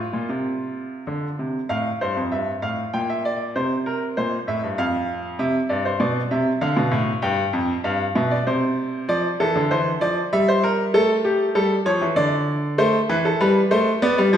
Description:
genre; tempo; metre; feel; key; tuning
classical, baroque-style two-part invention for grand piano; 97 BPM; 3/4; straight; F major, D minor from 9.1 s; A4 = 440 Hz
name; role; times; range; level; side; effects
bright baby grand piano; solo; 0.0-14.4 s; F2 to G5; -19 LUFS; equal; none
room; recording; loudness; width
wet recital hall reverb, RT60 1.7 s; heard from further back in the room, nothing above 10.5 kHz; -19 LUFS; side -9 dB against mid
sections
0.0-1.7 A section; 1.7-9.1 B section; 9.1-14.4 C section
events
none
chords
0.0 F5; 1.7 F; 2.9 Gm/Bb; 3.5 C7; 4.8 N.C.; 5.4 C; 6.6 Dm; 7.2 G7; 8.5 N.C.; 9.1 Dm; 10.3 Edim/G; 10.9 A7; 12.2 N.C.; 12.8 Am

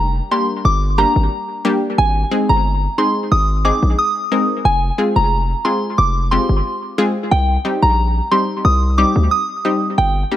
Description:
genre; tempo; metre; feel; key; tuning
dancehall; 90 BPM; 4/4; straight; C minor; A4 = 440 Hz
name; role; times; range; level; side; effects
hard-hitting 808-style bass; bass; 0.0-10.2 s; F1 to D2; -16 LUFS; equal; none
soft synth bell; melody; 0.3-10.1 s; G5 to Eb6; -18 LUFS; right 1 dB; chorus, analog delay
analog pluck; accompaniment; 0.3-10.4 s; G3 to Bb4; -20 LUFS; left 2 dB; chorus, analog delay
room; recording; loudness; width
light reverb, digital ambience; echo-heavy mix; -14 LUFS; side -12 dB against mid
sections
0.0-10.4 A section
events
none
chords
0.0 Gm; 2.0 Ab; 4.6 Fm; 7.3 Cm

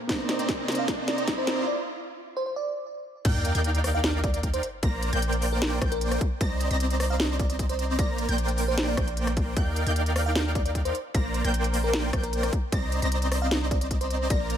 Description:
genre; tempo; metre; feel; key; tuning
future bass; 152 BPM; 4/4; half-time; unclear; A4 = 439 Hz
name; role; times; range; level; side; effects
riser and sub drop; sound effects; 0.0-4.8 s; none; -35 LUFS; equal; none
felt-muted upright piano; accompaniment; 0.1-1.7 s; C3 to C5; -34 LUFS; right 1 dB; sidechain pumping, digital delay
dense compressed supersaw; riff; 0.1-14.6 s; Bb3 to Bb5; -30 LUFS; right 1 dB; sidechain pumping
electronic kick drum; drums; 0.1-14.4 s; none; -27 LUFS; equal; none
trap drum kit; drums; 0.1-14.6 s; crash cymbal, hi-hat, rim click, snare drum; -30 LUFS; equal; none
bell-like FM electric piano; melody; 0.8-14.4 s; Bb4 to F5; -32 LUFS; right 1 dB; chorus, phaser, sidechain pumping, digital delay
wide unison pluck; arpeggios; 3.2-14.6 s; G6 to Bb6; -37 LUFS; equal; sidechain pumping, digital delay
long sustained 808-style bass; bass; 3.2-14.6 s; Bb1 to Eb2; -28 LUFS; equal; tube saturation, sidechain pumping
room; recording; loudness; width
light reverb, digital ambience; high-pass filter; -24 LUFS; side -10 dB against mid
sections
0.0-3.2 A section; 3.2-14.6 B section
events
build-up 0.0-3.2; drum fill 0.0-1.7; riser 0.0-1.7; filter sweep 0.0-3.2; break 1.7-3.2; drop 3.2-14.6; impact 3.2-4.8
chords
0.0 Cm9; 1.7 N.C.; 3.2 Ebmaj9; 4.6 Bb6; 6.2 Cm9; 8.0 Bb6; 9.6 Ebmaj9; 10.9 Bb6; 12.5 Cm9

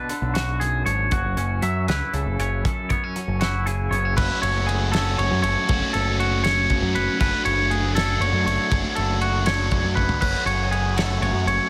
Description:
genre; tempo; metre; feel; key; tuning
math rock and midwest emo; 79 BPM (dotted quarters); 6/8; straight; unclear; A4 = 440 Hz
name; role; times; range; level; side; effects
twangy electric guitar; accompaniment; 0.0-5.7 s; F#2 to F#4; -34 LUFS; equal; tremolo
twangy electric guitar; arpeggios; 0.0-11.7 s; F#4 to E5; -27 LUFS; equal; spring reverb, digital delay
loose indie drum kit; drums; 0.1-11.6 s; crash cymbal, hi-hat, kick drum, ride cymbal, snare drum, toms; -29 LUFS; equal; none
growling picked electric bass; bass; 0.2-11.6 s; F#1 to F#2; -27 LUFS; equal; overdrive
biting overdriven guitar; riff; 4.2-11.7 s; F#3 to F#4; -29 LUFS; equal; phaser
room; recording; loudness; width
light reverb; dense, heavily limited modern master; -22 LUFS; mono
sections
0.0-4.2 A section; 4.2-11.7 B section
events
drum fill 10.0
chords
0.0 Bm; 1.1 F#m11; 7.2 Dmaj7/F#; 10.2 F#madd9

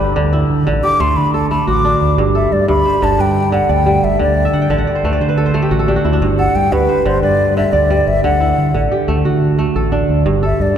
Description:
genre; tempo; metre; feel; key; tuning
west african traditional, West African string and xylophone music; 119 BPM (dotted quarters); 12/8; straight; G major; A4 = 440 Hz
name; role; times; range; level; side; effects
mellow hollow concert flute; melody; 0.0-10.8 s; B4 to D6; -17 LUFS; left 1 dB; none
kora; arpeggios; 0.0-10.8 s; G2 to A5; -16 LUFS; right 2 dB; none
deep dub fingered electric bass; bass; 0.0-10.7 s; G1 to D3; -16 LUFS; equal; none
room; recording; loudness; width
wet cathedral reverb, RT60 4.7 s; recorded in a church or concert hall; -12 LUFS; side -9 dB against mid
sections
0.0-2.2 A section; 2.2-10.8 B section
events
flute solo 0.0-2.2; kora fill 4.5-6.2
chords
0.2 D; 2.2 G; 4.2 D5; 6.2 G; 8.2 D; 10.3 G5

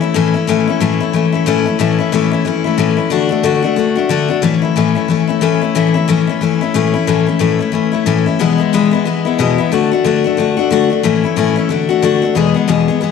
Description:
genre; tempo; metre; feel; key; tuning
rock; 182 BPM; 4/4; swing 60% on 8ths; A major; A4 = 440 Hz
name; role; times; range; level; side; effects
picked steel-string acoustic guitar; solo; 0.0-13.1 s; E2 to G#4; -12 LUFS; left 7 dB; slapback echo
room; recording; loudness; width
moderate echo chamber reverb, RT60 1.9 s, studio reverb; none; -12 LUFS; side -6 dB against mid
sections
0.0-13.1 A section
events
none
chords
0.0 A; 3.1 D; 4.4 A; 8.4 E; 9.7 D; 11.0 A; 11.7 D; 12.4 E

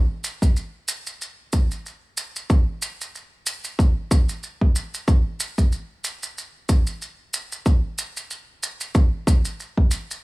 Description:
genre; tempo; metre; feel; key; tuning
glitch hop; 93 BPM; 4/4; swing 56% on 16ths; none; none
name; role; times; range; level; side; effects
maracas; percussion; 0.2-10.2 s; none; -29 LUFS; right 1 dB; none
electronic kick drum; drums; 0.4-9.9 s; none; -18 LUFS; equal; studio reverb
room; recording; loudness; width
little or no reverb; small room ambience; -21 LUFS; side -22 dB against mid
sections
0.0-10.2 A section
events
none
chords
none

